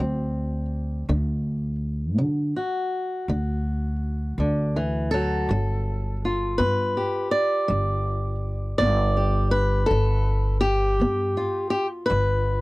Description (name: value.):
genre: acoustic country blues, solo or duo.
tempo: 54 BPM (dotted quarters).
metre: 12/8.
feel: straight.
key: unclear.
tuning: A4 = 440 Hz.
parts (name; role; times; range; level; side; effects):
fingerpicked swing-style acoustic guitar; melody; 0.0-12.6 s; D3 to D5; -24 LUFS; equal; none.
upright bass; bass; 0.0-12.6 s; G1 to D3; -24 LUFS; equal; none.
room: light reverb.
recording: dry, close 1970s-style studio recording.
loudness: -22 LUFS.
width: side -21 dB against mid.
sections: 0.0-12.6 A section.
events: none.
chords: 0.0 D; 5.5 G7.